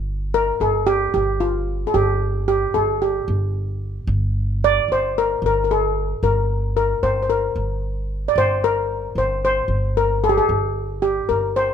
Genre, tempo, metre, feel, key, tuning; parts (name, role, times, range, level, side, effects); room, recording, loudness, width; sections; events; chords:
Arabic maqam ensemble; 112 BPM; 4/4; straight; G maqam bayati; A4 = 440 Hz
upright bass; bass; 0.0-11.7 s; G1; -23 LUFS; right 1 dB
steel pan; melody; 0.3-11.7 s; F4 to D5; -19 LUFS; left 1 dB
little or no reverb; close, detailed microphones; -18 LUFS; side -8 dB against mid
0.0-11.7 A section